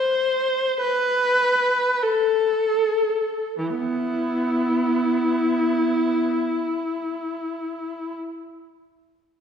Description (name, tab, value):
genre	classical, free, expressive piece for unaccompanied viola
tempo	free time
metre	none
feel	none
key	unclear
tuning	A4 = 440 Hz
part	rich viola	solo	0.0-8.1 s	E3 to C5	-20 LUFS	equal	none
room	wet scoring stage reverb, RT60 1.6 s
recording	recorded in a church or concert hall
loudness	-20 LUFS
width	side -7 dB against mid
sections	0.0-3.6 A section; 3.6-7.5 B section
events	slowing down 0.0-3.6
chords	none